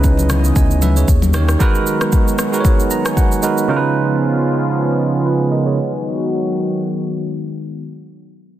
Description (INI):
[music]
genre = amapiano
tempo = 115 BPM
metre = 4/4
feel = swing 55% on 16ths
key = G# minor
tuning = A4 = 440 Hz
[part]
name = bell-like tine electric piano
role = accompaniment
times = 0.0-5.9 s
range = C#3 to A#5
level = -18 LUFS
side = right 5 dB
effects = low-pass filter
[part]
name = warm analog pad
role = sustained chords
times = 0.0-7.8 s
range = C#3 to D#5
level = -20 LUFS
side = left 2 dB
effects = chorus, sidechain pumping, low-pass filter
[part]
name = saturated sub bass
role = bass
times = 0.0-1.6 s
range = C#2 to D#2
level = -14 LUFS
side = equal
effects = none
[part]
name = afro-pop drum kit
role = drums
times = 0.0-3.7 s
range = kick drum, rim click, shaker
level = -16 LUFS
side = equal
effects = soft clipping on snare
[part]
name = congas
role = percussion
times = 0.0-1.5 s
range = none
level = -25 LUFS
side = left 5 dB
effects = none
[sound]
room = light reverb, digital ambience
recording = dense, heavily limited modern master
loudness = -14 LUFS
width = side -12 dB against mid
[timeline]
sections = 0.0-7.9 A section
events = filter sweep 0.0-7.9; tine electric piano fill 2.6-3.7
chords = 0.0 C#m9; 1.1 D#7; 1.6 G#m7; 3.7 C#7; 5.8 G#m7